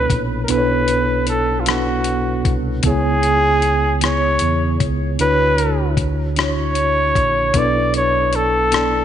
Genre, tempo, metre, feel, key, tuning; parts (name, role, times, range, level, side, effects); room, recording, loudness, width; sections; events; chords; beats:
slow six-eight R&B; 51 BPM (dotted quarters); 6/8; straight; B dorian; A4 = 438 Hz
warm flugelhorn; melody; 0.0-9.0 s; E#4 to D5; -18 LUFS; equal
mellow tine electric piano; accompaniment; 0.0-9.0 s; B2 to D5; -21 LUFS; equal; medium stereo tremolo
deep dub fingered electric bass; bass; 0.0-9.0 s; A#1 to E2; -22 LUFS; equal
dusty soul sampler-style drum kit; drums; 0.1-8.9 s; hi-hat, kick drum, rim click; -21 LUFS; left 3 dB
moderate echo chamber reverb, RT60 2.0 s; 1960s-style stereo, nothing above 10.4 kHz; -15 LUFS; side -10 dB against mid
0.0-9.0 A section
0.0 Bm11; 2.8 C#m7; 5.2 Dmaj9; 7.5 Bm11
| 0.48 1.66 | 2.84 4.01 | 5.19 6.37 | 7.54 8.72